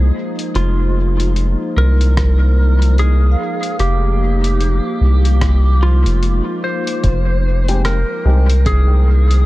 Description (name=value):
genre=ambient dub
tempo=74 BPM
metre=4/4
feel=swing 60% on 16ths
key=F minor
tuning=A4 = 440 Hz
part: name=warbly tape-like pad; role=sustained chords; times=0.0-9.5 s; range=F3 to C5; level=-24 LUFS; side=equal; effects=chorus, built-in reverb
part: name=soft dub sub bass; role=bass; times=0.0-9.5 s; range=F1 to C2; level=-12 LUFS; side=equal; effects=tube saturation
part: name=lo-fi sampler-style drum kit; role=drums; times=0.4-9.4 s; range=hi-hat, rim click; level=-28 LUFS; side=left 1 dB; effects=studio reverb, dub echo
part: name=clean lap steel guitar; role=melody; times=0.6-9.5 s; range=F4 to C5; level=-23 LUFS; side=equal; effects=dub echo
part: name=electronic kick drum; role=drums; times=2.2-8.9 s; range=none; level=-20 LUFS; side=equal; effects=studio reverb
part: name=vibraphone with medium mallets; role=arpeggios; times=3.3-9.5 s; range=Bb3 to F5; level=-28 LUFS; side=equal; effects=dub echo
part: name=dark upright piano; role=stabs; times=7.7-8.4 s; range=Ab3 to G4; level=-25 LUFS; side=left 3 dB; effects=dub echo
room=digital ambience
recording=none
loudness=-12 LUFS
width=side -17 dB against mid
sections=0.0-7.0 A section; 7.0-9.5 B section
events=none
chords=0.0 Fm9